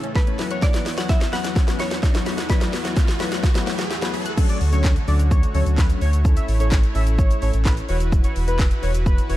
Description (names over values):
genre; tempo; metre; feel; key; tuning
dance-pop; 128 BPM; 4/4; straight; unclear; A4 = 437 Hz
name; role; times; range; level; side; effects
mallet-like synth pluck; melody; 0.0-3.9 s; B4 to F#5; -30 LUFS; equal; chorus, ping-pong delay
tine electric piano; accompaniment; 0.0-9.4 s; F#3 to D5; -29 LUFS; left 6 dB; analog chorus
soft supersaw; sustained chords; 0.0-9.4 s; E2 to C#5; -32 LUFS; equal; sidechain pumping
tight sequenced synth; arpeggios; 0.0-4.3 s; E3 to F#6; -35 LUFS; equal; chorus, sidechain pumping, ping-pong delay
house drum kit; drums; 0.0-9.4 s; crash cymbal, handclaps, hi-hat, kick drum, shaker, snare drum; -20 LUFS; equal; overdrive
riser; sound effects; 0.0-4.4 s; none; -32 LUFS; right 1 dB; none
octave-doubled lead; melody; 4.5-9.4 s; B4 to E5; -30 LUFS; equal; chorus, sidechain pumping
sub bass with octave; bass; 4.6-9.4 s; E1 to D2; -20 LUFS; equal; sidechain pumping
room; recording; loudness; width
digital ambience; dark, warm production; -18 LUFS; side -15 dB against mid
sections
0.0-4.4 A section; 4.4-9.4 B section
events
build-up 0.0-4.4; drum fill 0.0-4.4; riser 0.0-4.4; drop 4.4-9.4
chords
0.4 Esus2; 4.4 Dmaj7; 6.2 A; 7.9 Esus2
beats
0.16 | 0.62 1.09 1.56 2.03 | 2.50 2.97 3.44 3.91 | 4.37 4.84 5.31 5.78 | 6.25 6.72 7.19 7.66 | 8.12 8.59 9.06